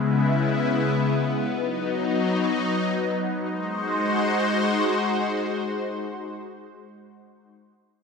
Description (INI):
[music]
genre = pop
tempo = free time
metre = none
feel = none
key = unclear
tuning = A4 = 440 Hz
[part]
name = lush unison pad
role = sustained chords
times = 0.0-7.5 s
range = C#3 to B#4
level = -22 LUFS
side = left 2 dB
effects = chorus, phaser
[sound]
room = moderate lush hall reverb, RT60 2.4 s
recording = none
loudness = -22 LUFS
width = side -5 dB against mid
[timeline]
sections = 0.0-3.5 A section; 3.5-7.4 B section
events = none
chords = 0.0 C#m7; 1.5 B; 3.5 G#7